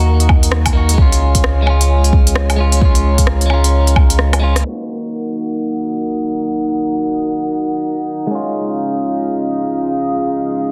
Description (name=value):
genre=future garage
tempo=131 BPM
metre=4/4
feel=swing 61% on 16ths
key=Eb minor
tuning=A4 = 440 Hz
part: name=clean electric guitar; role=accompaniment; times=0.0-10.7 s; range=Ab3 to Gb4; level=-24 LUFS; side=equal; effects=vintage 12-bit sampler grit, sidechain pumping, low-pass filter, digital delay
part: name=dark analog pad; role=sustained chords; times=0.0-10.7 s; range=Db4 to Bb5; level=-22 LUFS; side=equal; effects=chorus, sidechain pumping
part: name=warm sub bass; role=bass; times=0.0-4.6 s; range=Db2 to Eb2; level=-16 LUFS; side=equal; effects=tube saturation, sidechain pumping
part: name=deep house drum kit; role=drums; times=0.2-4.6 s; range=hi-hat, rim click, woodblock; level=-22 LUFS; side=equal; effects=small room ambience, soft clipping on snare
part: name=electronic kick drum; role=drums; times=0.3-4.1 s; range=none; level=-14 LUFS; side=equal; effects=small room ambience
part: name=drifting glass-harmonics texture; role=texture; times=6.0-10.7 s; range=Eb4 to Eb5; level=-31 LUFS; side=equal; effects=chorus, built-in reverb
room=light reverb, digital ambience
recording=dense, heavily limited modern master, low-pass filter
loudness=-15 LUFS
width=mono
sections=0.0-4.6 A section; 4.6-10.7 B section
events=break 4.2-4.6; drum fill 4.2-4.6; band accent 4.5; filter sweep on clean electric guitar 4.6-10.7; filter sweep 4.6-10.7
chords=0.0 Ebm; 1.0 Db; 4.6 Ebm; 8.3 Db